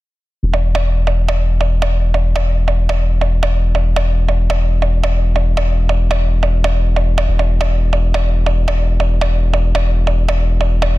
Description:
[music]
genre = psychedelic trance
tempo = 140 BPM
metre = 4/4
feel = straight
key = unclear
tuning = A4 = 440 Hz
[part]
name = round analog bass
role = bass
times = 0.4-11.0 s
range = E1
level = -14 LUFS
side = equal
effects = none
[part]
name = percussion blips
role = drums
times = 0.5-10.9 s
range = none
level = -20 LUFS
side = right 4 dB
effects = overdrive
[sound]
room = little or no reverb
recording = dense, heavily limited modern master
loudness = -13 LUFS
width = side -18 dB against mid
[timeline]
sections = 0.4-11.0 A section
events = none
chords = none

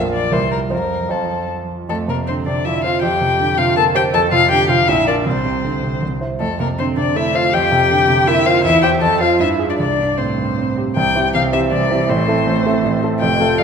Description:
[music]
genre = quick classical-period movement for piano trio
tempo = 159 BPM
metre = 3/4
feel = straight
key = F major, C major from 8.6 s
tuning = A4 = 440 Hz
[part]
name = muted violin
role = melody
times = 0.0-13.6 s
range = A4 to A5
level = -18 LUFS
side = left 6 dB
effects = none
[part]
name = muted cello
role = second line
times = 0.0-13.6 s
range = E3 to A4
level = -21 LUFS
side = right 4 dB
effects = none
[part]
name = warm concert grand piano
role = accompaniment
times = 0.0-13.6 s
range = F1 to C5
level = -18 LUFS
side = right 2 dB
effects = none
[sound]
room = moderate scoring stage reverb, RT60 1.5 s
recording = minimal, uncompressed stereo recording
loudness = -14 LUFS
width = side -6 dB against mid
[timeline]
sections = 0.0-1.9 A section; 1.9-11.0 A section; 11.0-13.6 B section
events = none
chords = 0.3 C7; 0.7 F; 1.9 F5; 3.0 C5/F; 4.1 F5; 4.9 Bb; 5.3 Csus2; 6.0 C; 6.4 F; 7.5 C5/F; 8.6 C/E; 9.0 F; 9.4 E7#9/G; 9.8 C5; 11.0 C; 12.1 Am

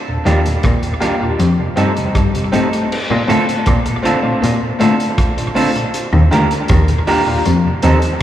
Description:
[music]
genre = lovers rock reggae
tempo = 79 BPM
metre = 4/4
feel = straight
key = Bb major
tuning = A4 = 440 Hz
[part]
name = mellow tonewheel organ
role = accompaniment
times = 0.1-7.9 s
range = Eb2 to Eb4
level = -23 LUFS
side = right 1 dB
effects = chorus vibrato
[part]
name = bright baby grand piano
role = accompaniment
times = 0.2-8.0 s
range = A3 to A4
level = -21 LUFS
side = left 1 dB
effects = dub echo, slapback echo
[part]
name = electric guitar through a small old amp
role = riff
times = 0.3-7.9 s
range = D3 to Bb3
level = -21 LUFS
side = left 5 dB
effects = spring reverb, dub echo, slapback echo
[part]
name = electric guitar through a small old amp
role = stabs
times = 0.3-8.0 s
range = Bb3 to Bb4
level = -19 LUFS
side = right 3 dB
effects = spring reverb, dub echo, slapback echo
[part]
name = rich cello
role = bass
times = 0.3-7.9 s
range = D2 to Bb2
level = -16 LUFS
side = equal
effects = none
[part]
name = cloth-damped thuddy drum kit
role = drums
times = 0.3-8.2 s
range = crash cymbal, hi-hat, kick drum, rim click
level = -21 LUFS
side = equal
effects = dub echo
[sound]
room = light reverb, studio reverb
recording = live gig heard through the venue's PA, recital hall reverb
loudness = -12 LUFS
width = side -12 dB against mid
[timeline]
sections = 0.0-2.9 A section; 2.9-8.2 B section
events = none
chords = 0.0 Ebmaj7; 1.4 F7; 2.9 Bbmaj9; 5.9 Ebmaj7; 7.5 F7

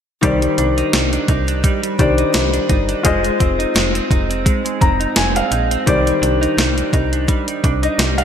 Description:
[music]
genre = 1980s-style pop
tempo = 85 BPM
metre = 4/4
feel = swing 55% on 16ths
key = C minor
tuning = A4 = 439 Hz
[part]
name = clear baby grand piano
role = accompaniment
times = 0.2-8.2 s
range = Eb3 to Bb5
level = -19 LUFS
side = left 3 dB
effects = shimmer reverb
[part]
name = direct-recorded clean electric guitar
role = riff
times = 0.2-8.2 s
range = G3 to Eb4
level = -21 LUFS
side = right 4 dB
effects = analog chorus, ping-pong delay, shimmer reverb
[part]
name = slap-like FM bass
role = bass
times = 0.2-8.2 s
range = F1 to C2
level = -21 LUFS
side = equal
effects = none
[part]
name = clean 12-bit digital drum machine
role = drums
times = 0.2-8.2 s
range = hi-hat, kick drum, snare drum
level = -18 LUFS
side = equal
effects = overdrive, gated reverb
[sound]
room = moderate plate reverb, RT60 2.3 s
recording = bright 1980s-style digital production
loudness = -14 LUFS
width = side -8 dB against mid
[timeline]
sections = 0.2-8.2 A section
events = grand piano fill 4.5-5.9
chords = 0.2 Cmadd9; 3.0 Fm7; 5.9 Cmadd9

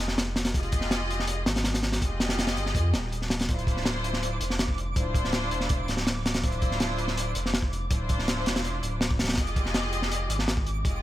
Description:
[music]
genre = drum and bass, jungle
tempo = 163 BPM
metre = 4/4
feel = straight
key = D minor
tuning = A4 = 436 Hz
[part]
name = rich studio string section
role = sustained chords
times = 0.0-11.0 s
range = D4 to Eb5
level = -33 LUFS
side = left 1 dB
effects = vintage 12-bit sampler grit
[part]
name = saturated sub bass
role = bass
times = 0.0-11.0 s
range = D1 to F2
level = -30 LUFS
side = equal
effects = none
[part]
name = crunchy breakbeat drum kit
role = drums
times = 0.0-10.9 s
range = hi-hat, kick drum, snare drum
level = -27 LUFS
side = equal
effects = none
[part]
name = twinkling granular texture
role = texture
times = 3.8-11.0 s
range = D6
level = -39 LUFS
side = right 2 dB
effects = built-in reverb
[sound]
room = studio reverb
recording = none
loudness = -25 LUFS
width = side -14 dB against mid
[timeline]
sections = 0.0-11.0 A section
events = none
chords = 0.0 Fm9; 3.5 Dm9; 9.4 Fm9

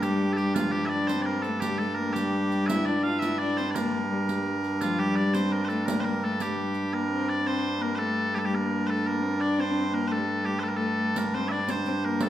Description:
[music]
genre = medieval dance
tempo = 113 BPM (dotted quarters)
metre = 6/8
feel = straight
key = G minor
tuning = A4 = 441 Hz
[part]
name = loud bright bagpipes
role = melody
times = 0.0-12.3 s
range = G2 to F5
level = -27 LUFS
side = right 1 dB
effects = none
[part]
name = dark viola da gamba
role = second line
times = 0.0-12.3 s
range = F3 to F4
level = -29 LUFS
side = left 2 dB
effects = none
[part]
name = riq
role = percussion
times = 0.0-6.8, 11.2-12.3 s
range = none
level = -34 LUFS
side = right 3 dB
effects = none
[sound]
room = wet recital hall reverb, RT60 1.4 s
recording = none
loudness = -24 LUFS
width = side -12 dB against mid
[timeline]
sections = 0.0-6.9 A section; 6.9-12.3 B section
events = none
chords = none

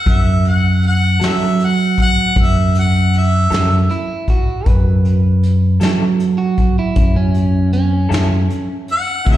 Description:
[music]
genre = slow blues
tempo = 52 BPM (dotted quarters)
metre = 12/8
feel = straight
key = unclear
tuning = A4 = 441 Hz
[part]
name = warm harmonica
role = melody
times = 0.0-9.4 s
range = E5 to F#5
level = -18 LUFS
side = left 1 dB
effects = slapback echo
[part]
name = fingered electric bass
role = bass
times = 0.1-9.4 s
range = C#2 to F#3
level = -14 LUFS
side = right 1 dB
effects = none
[part]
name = vintage brush drum kit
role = drums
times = 0.1-9.4 s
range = hi-hat, kick drum, snare drum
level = -18 LUFS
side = left 1 dB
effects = none
[part]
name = electric guitar through a small old amp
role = accompaniment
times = 1.2-9.4 s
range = C#3 to A4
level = -26 LUFS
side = left 2 dB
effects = tremolo, slapback echo
[part]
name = electric guitar at the edge of break-up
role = second line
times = 3.9-8.7 s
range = C#4 to B4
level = -24 LUFS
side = right 2 dB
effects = slapback echo
[sound]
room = small room ambience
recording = live gig heard through the venue's PA, recital hall reverb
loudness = -12 LUFS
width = side -13 dB against mid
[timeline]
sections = 0.0-9.4 A section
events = none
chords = 0.0 F#7(no3)

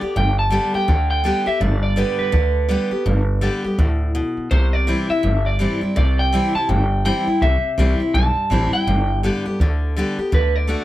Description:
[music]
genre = rockabilly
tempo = 165 BPM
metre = 4/4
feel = swing 61% on 8ths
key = G major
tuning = A4 = 439 Hz
[part]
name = electric guitar through a small old amp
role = melody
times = 0.0-10.8 s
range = B4 to A5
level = -22 LUFS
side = right 1 dB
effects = analog delay
[part]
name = picked steel-string acoustic guitar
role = accompaniment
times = 0.0-10.8 s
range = G2 to G4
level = -22 LUFS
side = left 1 dB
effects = none
[part]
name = upright bass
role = bass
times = 0.0-10.7 s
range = G1 to D2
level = -18 LUFS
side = equal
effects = none
[sound]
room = light reverb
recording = none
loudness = -16 LUFS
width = side -14 dB against mid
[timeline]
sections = 0.0-10.8 A section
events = none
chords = 0.0 G; 4.5 C; 8.9 G; 10.3 D

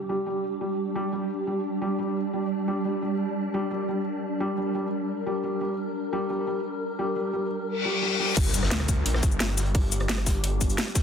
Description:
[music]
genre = dark technical drum and bass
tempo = 174 BPM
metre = 4/4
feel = straight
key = G minor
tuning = A4 = 437 Hz
[part]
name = swarming drone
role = sustained chords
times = 0.0-11.0 s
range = G3 to Bb4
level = -29 LUFS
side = equal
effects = built-in reverb, sidechain pumping
[part]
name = downlifter, reverse cymbal and impact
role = sound effects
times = 0.0-0.1, 7.7-9.7 s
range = none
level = -30 LUFS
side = left 3 dB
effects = none
[part]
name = felt-muted upright piano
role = arpeggios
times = 0.1-8.3 s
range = G3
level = -30 LUFS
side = equal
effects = sidechain pumping, low-pass filter, dub echo
[part]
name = wide detuned saw bass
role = bass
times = 8.4-10.8 s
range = G1 to D2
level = -27 LUFS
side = equal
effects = chorus, overdrive, sidechain pumping
[part]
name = crunchy breakbeat drum kit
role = drums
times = 8.4-11.0 s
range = hi-hat, snare drum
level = -37 LUFS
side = equal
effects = high-pass filter on hats, small room reverb, high-pass filter on snare, high-pass filter on room
[part]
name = drum and bass drum kit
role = drums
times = 8.4-11.0 s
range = cabasa, crash cymbal, hi-hat, rim click, snare drum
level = -28 LUFS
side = left 1 dB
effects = overdrive, low-pass filter on hats, small room reverb, low-pass filter on cymbals, low-pass filter on perc, low-pass filter on snare, low-pass filter on toms
[part]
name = electronic kick drum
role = drums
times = 8.4-11.0 s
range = none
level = -24 LUFS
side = equal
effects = overdrive, small room reverb
[sound]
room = moderate digital room reverb, RT60 1.2 s, small room ambience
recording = dense, heavily limited modern master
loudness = -25 LUFS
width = side -7 dB against mid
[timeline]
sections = 0.0-8.4 A section; 8.4-11.0 B section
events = reverse cymbal 7.7-8.4; drop 8.4-11.0; impact 8.4-9.7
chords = 0.0 G5

